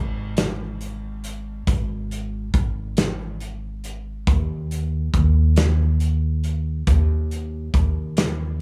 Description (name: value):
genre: six-eight pop ballad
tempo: 46 BPM (dotted quarters)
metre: 6/8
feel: straight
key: unclear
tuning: A4 = 440 Hz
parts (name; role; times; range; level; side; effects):
- upright bass; bass; 0.0-8.6 s; Ab1 to Eb2; -24 LUFS; equal; none
- modern studio drum kit; drums; 0.4-8.4 s; hi-hat, kick drum, snare drum; -24 LUFS; equal; none
room: little or no reverb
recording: none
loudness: -22 LUFS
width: mono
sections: 0.0-8.6 A section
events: none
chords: none